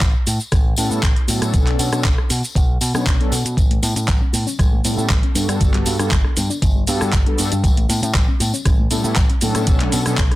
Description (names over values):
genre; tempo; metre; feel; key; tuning
nu-disco, nu disco; 118 BPM; 4/4; straight; A mixolydian; A4 = 440 Hz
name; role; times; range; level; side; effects
picked electric bass with an envelope filter; bass; 0.0-10.3 s; G1 to B2; -21 LUFS; equal; none
electronic kick drum; drums; 0.0-10.3 s; none; -17 LUFS; equal; none
pop drum kit; drums; 0.0-10.4 s; handclaps, hi-hat, rim click, shaker; -23 LUFS; equal; soft clipping on snare
tambourine; percussion; 0.0-10.3 s; none; -31 LUFS; left 4 dB; none
mellow synth brass; accompaniment; 0.8-10.2 s; F#3 to C#5; -24 LUFS; equal; chorus, analog delay
soft round pluck; arpeggios; 3.6-10.4 s; F#3 to D4; -27 LUFS; left 2 dB; chorus, cassette tape, sidechain pumping, analog delay
room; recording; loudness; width
digital ambience; dense, heavily limited modern master; -15 LUFS; side -17 dB against mid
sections
0.0-10.4 A section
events
none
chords
0.0 A9; 1.5 Bm7; 3.6 A9; 5.4 Gmaj7; 7.6 A9; 9.7 Bm7